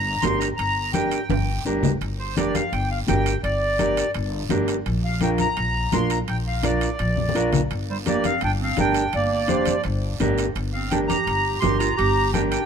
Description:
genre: latin, cumbia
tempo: 168 BPM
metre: 4/4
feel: straight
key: G minor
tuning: A4 = 440 Hz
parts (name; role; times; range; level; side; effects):
- accordion; melody; 0.0-12.7 s; C5 to C6; -25 LUFS; equal; none
- upright bass; bass; 0.0-12.6 s; G1 to Bb1; -26 LUFS; left 1 dB; none
- mellow electric guitar; accompaniment; 0.2-12.6 s; D4 to C5; -26 LUFS; right 1 dB; none
- congas; percussion; 0.2-12.5 s; none; -27 LUFS; left 3 dB; none
- guiro; percussion; 0.2-12.7 s; none; -37 LUFS; right 8 dB; none
- timbales; percussion; 0.2-12.7 s; none; -32 LUFS; right 9 dB; none
- clear clarinet; second line; 7.9-12.7 s; G3 to G4; -28 LUFS; right 7 dB; none
room: light reverb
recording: minimal, uncompressed stereo recording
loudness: -20 LUFS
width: side -7 dB against mid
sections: 0.0-2.0 A section; 2.0-12.7 A section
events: drum fill 1.3-2.0, 7.2-7.7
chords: 0.0 Gm; 4.9 Bb; 7.7 Gm

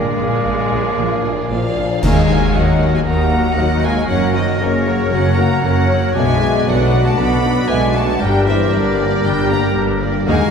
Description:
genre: cinematic, heroic adventure film score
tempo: 116 BPM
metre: 4/4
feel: straight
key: unclear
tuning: A4 = 440 Hz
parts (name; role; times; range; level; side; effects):
- warm chamber violin section; melody; 0.0-10.5 s; Ab4 to B5; -24 LUFS; left 3 dB; none
- clear clarinet; second line; 0.0-10.5 s; Gb4 to Bb4; -26 LUFS; left 2 dB; none
- clear oboe; second line; 0.0-10.5 s; Bb4 to D5; -26 LUFS; right 2 dB; none
- flute section; second line; 0.0-10.5 s; Bb4 to G5; -24 LUFS; equal; none
- warm symphonic violin section; second line; 0.0-10.5 s; D4 to Eb5; -28 LUFS; left 2 dB; none
- warm studio viola section; accompaniment; 0.0-10.5 s; D3 to Eb4; -24 LUFS; right 2 dB; none
- mellow French horn section; sustained chords; 0.0-10.5 s; Db3 to D4; -22 LUFS; left 2 dB; none
- concert harp; arpeggios; 0.0-10.5 s; Gb2 to Bb4; -23 LUFS; left 7 dB; none
- warm symphonic cello section; bass; 0.0-10.4 s; Eb2 to B2; -22 LUFS; right 2 dB; none
- rich symphonic double bass section; bass; 0.2-10.4 s; Gb1 to Eb2; -21 LUFS; right 3 dB; none
- clash cymbals and concert bass drum; percussion; 2.0-3.0 s; none; -24 LUFS; right 1 dB; none
- timpani; percussion; 2.0-2.8 s; Eb3; -21 LUFS; left 2 dB; none
room: wet scoring stage reverb, RT60 1.6 s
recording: heard from further back in the room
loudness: -13 LUFS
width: side -6 dB against mid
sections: 0.0-2.0 A section; 2.0-10.5 B section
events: band accent 2.0-2.5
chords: 0.0 Bb7; 2.0 Ebm; 4.1 Gb; 6.2 Bm; 8.2 Gm

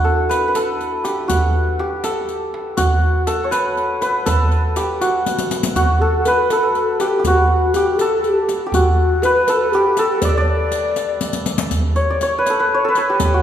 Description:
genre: Persian modal ensemble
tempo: 81 BPM (dotted quarters)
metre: 6/8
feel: straight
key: unclear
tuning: A4 = 439 Hz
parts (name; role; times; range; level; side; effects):
- santur; melody; 0.0-13.4 s; D4 to E5; -18 LUFS; equal; none
- riq; percussion; 0.3-13.3 s; none; -27 LUFS; left 4 dB; none
- tombak; percussion; 0.3-13.3 s; none; -20 LUFS; right 1 dB; none
- breathy mellow ney; second line; 5.8-11.5 s; F#4 to D5; -19 LUFS; left 2 dB; none
room: wet recital hall reverb, RT60 1.7 s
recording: heard from further back in the room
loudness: -15 LUFS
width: side -10 dB against mid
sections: 0.0-11.7 A section; 11.7-13.4 B section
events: drum fill 5.3-5.8, 11.2-11.7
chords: none

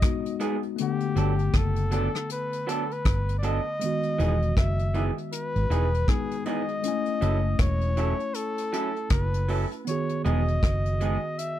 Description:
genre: lovers rock reggae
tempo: 79 BPM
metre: 4/4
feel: swing 60% on 16ths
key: E major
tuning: A4 = 439 Hz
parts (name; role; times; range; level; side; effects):
- warm flugelhorn; melody; 0.0-11.6 s; G4 to E5; -31 LUFS; left 2 dB; tape echo
- tine electric piano; accompaniment; 0.0-11.6 s; D3 to G#5; -31 LUFS; moving between left 11 dB and right 5 dB; overdrive, auto-pan, tape echo
- soft brush drum kit; drums; 0.0-11.6 s; hi-hat, kick drum, rim click; -26 LUFS; equal; none
- electric guitar through a small old amp; stabs; 0.4-11.2 s; E3 to A4; -30 LUFS; right 6 dB; none
- vintage muted fingered electric bass; bass; 1.2-11.2 s; E1 to G#1; -25 LUFS; equal; none
room: little or no reverb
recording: dry, close 1970s-style studio recording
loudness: -24 LUFS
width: side -12 dB against mid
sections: 0.0-11.6 A section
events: none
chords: 0.0 Emaj7 (rootless); 0.8 Gmaj9; 3.8 Emaj7; 6.8 F#m7; 9.9 Emaj7

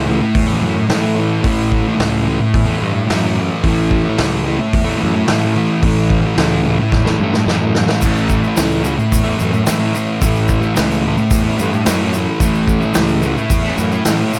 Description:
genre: garage rock duo or trio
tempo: 109 BPM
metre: 4/4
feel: straight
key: A major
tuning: A4 = 438 Hz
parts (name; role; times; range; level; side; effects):
- fuzz guitar; riff; 0.0-14.4 s; A2 to A3; -18 LUFS; equal; distortion
- fuzz fingered electric bass; bass; 0.0-14.4 s; A1 to A2; -23 LUFS; equal; overdrive, tube saturation
- vintage drum kit; drums; 0.3-14.2 s; crash cymbal, hi-hat, kick drum, snare drum; -22 LUFS; equal; none
- tube shaker; percussion; 8.0-14.4 s; none; -32 LUFS; equal; none
room: small room ambience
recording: none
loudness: -15 LUFS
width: mono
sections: 0.0-14.4 A section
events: drum fill 6.9-8.0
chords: 0.0 A

